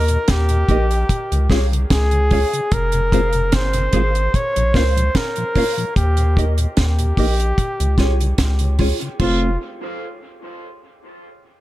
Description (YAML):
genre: dub reggae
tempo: 74 BPM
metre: 4/4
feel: straight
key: F minor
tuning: A4 = 439 Hz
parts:
  - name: clear flugelhorn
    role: melody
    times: 0.0-9.6 s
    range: F4 to Db5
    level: -23 LUFS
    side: equal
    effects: dub echo
  - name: mellow electric guitar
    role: accompaniment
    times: 0.0-9.5 s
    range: F4 to F5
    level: -28 LUFS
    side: right 2 dB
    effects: dub echo
  - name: soft dub sub bass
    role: bass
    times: 0.0-9.6 s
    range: F1 to Eb2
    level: -18 LUFS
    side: equal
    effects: none
  - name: mellow tonewheel organ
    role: accompaniment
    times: 0.1-9.5 s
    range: Eb2 to G4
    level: -25 LUFS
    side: left 2 dB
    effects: slow rotary speaker
  - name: deep reggae drum kit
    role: drums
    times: 0.1-9.4 s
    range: crash cymbal, hi-hat, kick drum, snare drum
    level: -20 LUFS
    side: equal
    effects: none
room: light reverb, small room reverb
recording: none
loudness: -15 LUFS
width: side -16 dB against mid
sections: 0.0-9.2 A section; 9.2-11.6 B section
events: none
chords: 0.0 Eb; 1.1 Db; 2.7 Fm; 4.3 Bbm; 6.0 Eb; 7.6 Db; 9.2 F